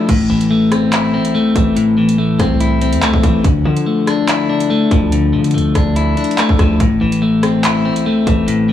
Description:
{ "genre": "hip hop, drill", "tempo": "143 BPM", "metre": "4/4", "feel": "half-time", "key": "A minor", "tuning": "A4 = 440 Hz", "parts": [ { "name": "clean electric guitar", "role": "accompaniment", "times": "0.0-8.7 s", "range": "A2 to E4", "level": "-13 LUFS", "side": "left 2 dB", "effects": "low-pass filter" }, { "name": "hard-hitting 808-style bass", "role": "bass", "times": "0.1-8.7 s", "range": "A1 to D3", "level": "-21 LUFS", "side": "right 1 dB", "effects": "none" }, { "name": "drill drum kit", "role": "drums", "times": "0.1-8.6 s", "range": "crash cymbal, handclaps, hi-hat, kick drum, rim click", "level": "-18 LUFS", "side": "right 1 dB", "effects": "none" } ], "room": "little or no reverb", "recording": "blown-out, overdriven recording, overdrive, small room ambience", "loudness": "-12 LUFS", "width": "side -11 dB against mid", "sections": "0.1-8.7 A section", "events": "none", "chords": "0.1 Am; 3.4 Dmadd9; 6.8 Am" }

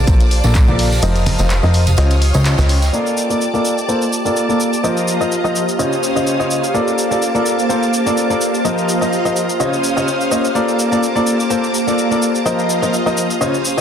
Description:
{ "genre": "piano house", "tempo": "126 BPM", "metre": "4/4", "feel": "swing 54% on 16ths", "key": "Bb major", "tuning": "A4 = 442 Hz", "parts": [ { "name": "string machine, violins", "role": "sustained chords", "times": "0.0-13.8 s", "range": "Bb3 to F6", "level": "-22 LUFS", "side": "right 1 dB", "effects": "ensemble chorus, sidechain pumping" }, { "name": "plucky analog bass", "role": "bass", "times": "0.0-2.9 s", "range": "F1 to Db2", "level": "-14 LUFS", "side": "equal", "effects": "sidechain pumping" }, { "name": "ethereal airy pad", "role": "texture", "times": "0.0-13.8 s", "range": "Bb3 to Bb5", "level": "-21 LUFS", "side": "equal", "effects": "ensemble chorus, built-in reverb, sidechain pumping" }, { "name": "clear upright piano", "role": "riff", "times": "0.1-13.8 s", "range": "Db3 to Eb5", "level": "-18 LUFS", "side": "left 1 dB", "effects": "sidechain pumping, low-pass filter, digital delay" }, { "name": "electronic kick drum", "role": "drums", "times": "0.1-0.7 s", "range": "none", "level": "-12 LUFS", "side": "equal", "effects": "none" }, { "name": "loose indie drum kit", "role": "drums", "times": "0.1-2.9 s", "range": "hi-hat, shaker, snare drum", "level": "-30 LUFS", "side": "equal", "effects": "none" }, { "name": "punchy analog drum machine", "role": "drums", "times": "0.1-13.8 s", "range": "cabasa, handclaps, hi-hat", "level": "-24 LUFS", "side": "left 1 dB", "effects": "none" }, { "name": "tambourine and congas", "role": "percussion", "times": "0.1-2.9 s", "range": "none", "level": "-24 LUFS", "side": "right 3 dB", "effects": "none" } ], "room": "moderate lush hall reverb, RT60 2.1 s", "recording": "dense, heavily limited modern master", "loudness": "-13 LUFS", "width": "side -8 dB against mid", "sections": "0.0-2.9 A section; 2.9-13.8 B section", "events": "kick drops out 1.0-2.9; band accent 2.5; filter sweep on upright piano 2.9-13.8", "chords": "0.0 Bbmaj7; 1.0 F7sus4; 2.0 Dbmaj9; 2.9 Bbmaj7; 4.8 F7sus4; 5.8 Dbmaj9; 6.7 Bbmaj7; 8.6 F7sus4; 9.6 Dbmaj9; 10.6 Bbmaj7; 12.5 F7sus4" }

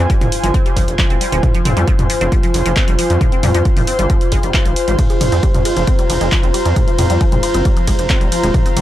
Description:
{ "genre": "driving peak-time techno", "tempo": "135 BPM", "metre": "4/4", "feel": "straight", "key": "F minor", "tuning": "A4 = 436 Hz", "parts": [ { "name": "resonant blip pluck", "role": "riff", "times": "0.0-8.8 s", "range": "F3 to F4", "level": "-23 LUFS", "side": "left 1 dB", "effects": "phaser, tube saturation, sidechain pumping, analog delay" }, { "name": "gritty driven synth bass", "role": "bass", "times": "0.0-8.8 s", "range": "Eb1 to F2", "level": "-17 LUFS", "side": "equal", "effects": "sidechain pumping" }, { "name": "airy breathy pad", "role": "texture", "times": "0.0-8.8 s", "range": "F4 to Bb5", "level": "-19 LUFS", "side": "equal", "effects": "chorus, sidechain pumping" }, { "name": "electronic kick drum", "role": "drums", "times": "0.1-8.6 s", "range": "none", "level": "-15 LUFS", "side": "equal", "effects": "none" }, { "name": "punchy analog drum machine", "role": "drums", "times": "0.1-8.8 s", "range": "handclaps, hi-hat, ride cymbal, toms", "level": "-21 LUFS", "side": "equal", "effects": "none" } ], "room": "little or no reverb", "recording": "dry, gritty hardware recording", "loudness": "-12 LUFS", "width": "side -13 dB against mid", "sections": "0.0-8.8 A section", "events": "none", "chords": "0.0 Fm" }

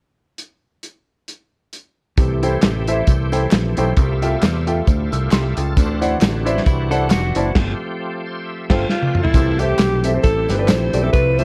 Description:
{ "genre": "uptempo gospel", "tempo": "134 BPM", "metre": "4/4", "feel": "swing 56% on 8ths", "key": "C major", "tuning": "A4 = 440 Hz", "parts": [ { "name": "warm soul drum kit", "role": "drums", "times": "0.4-11.4 s", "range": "crash cymbal, hi-hat, kick drum, snare drum, toms", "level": "-20 LUFS", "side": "equal", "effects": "none" }, { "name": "clear grand piano", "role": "accompaniment", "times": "2.2-11.4 s", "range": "C3 to E6", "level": "-25 LUFS", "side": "equal", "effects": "none" }, { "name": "bright tonewheel organ", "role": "sustained chords", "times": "2.2-11.4 s", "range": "E3 to A5", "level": "-30 LUFS", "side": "equal", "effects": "slow rotary speaker, overdrive, chorus vibrato" }, { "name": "fingered electric bass", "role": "bass", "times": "2.2-11.4 s", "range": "F1 to E2", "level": "-23 LUFS", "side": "equal", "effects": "none" }, { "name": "tambourine and handclaps", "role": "percussion", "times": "2.2-11.4 s", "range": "none", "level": "-37 LUFS", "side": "equal", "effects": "none" }, { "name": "clean electric guitar", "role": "second line", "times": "6.7-7.5 s", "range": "E4 to A4", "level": "-28 LUFS", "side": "equal", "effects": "none" }, { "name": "clear alto saxophone", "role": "melody", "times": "8.9-11.4 s", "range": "E4 to C5", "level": "-22 LUFS", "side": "equal", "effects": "none" }, { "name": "dark French horn section", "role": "sustained chords", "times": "9.3-11.4 s", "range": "F3 to E4", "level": "-32 LUFS", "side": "equal", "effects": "none" } ], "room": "light reverb", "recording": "worn, warbling old tape, cassette tape, warbly pitch drift", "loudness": "-18 LUFS", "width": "mono", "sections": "0.4-2.2 A section; 2.2-9.3 B section; 9.3-11.4 C section", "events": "band accent 7.6-9.3; tonewheel organ fill 8.0-9.3; drum fill 8.9-9.3", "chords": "0.4 N.C.; 2.2 C6; 4.0 Fmaj9/C; 5.8 D9; 7.6 G9sus4; 9.3 C6" }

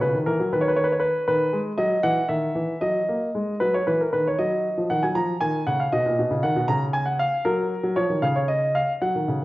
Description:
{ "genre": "classical-period piano sonatina", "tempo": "78 BPM (dotted quarters)", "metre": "6/8", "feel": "rubato", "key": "F# major from 4.4 s", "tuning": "A4 = 440 Hz", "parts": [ { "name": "clear grand piano", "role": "solo", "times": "0.0-9.4 s", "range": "A#2 to A#5", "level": "-21 LUFS", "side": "equal", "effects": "none" } ], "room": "wet recital hall reverb, RT60 1.3 s", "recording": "worn, warbling old tape, cassette tape, warbly pitch drift, nothing above 7.8 kHz", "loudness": "-21 LUFS", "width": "side -18 dB against mid", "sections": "0.0-9.4 A section", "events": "none", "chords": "0.0 F#7; 0.5 N.C.; 1.3 B/D#; 2.0 Esus2; 2.8 F#69; 3.6 C#m11; 4.4 D#m; 5.9 B; 6.7 N.C.; 7.4 F#; 8.2 N.C." }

